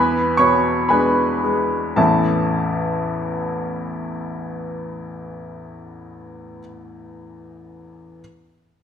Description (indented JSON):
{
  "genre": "classical, romantic character piece for solo piano",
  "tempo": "60 BPM",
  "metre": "4/4",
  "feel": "rubato",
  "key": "A major",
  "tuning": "A4 = 440 Hz",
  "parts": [
    { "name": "bright baby grand piano", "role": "solo", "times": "0.0-8.2 s", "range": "A1 to C#6", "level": "-19 LUFS", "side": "equal", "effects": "none" }
  ],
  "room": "wet recital hall reverb, RT60 1.6 s",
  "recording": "minimal, uncompressed stereo recording",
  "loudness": "-17 LUFS",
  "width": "side -8 dB against mid",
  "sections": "0.0-2.0 A section; 2.0-6.0 B section",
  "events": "slowing down 0.0-2.0",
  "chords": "0.0 E7; 2.0 A"
}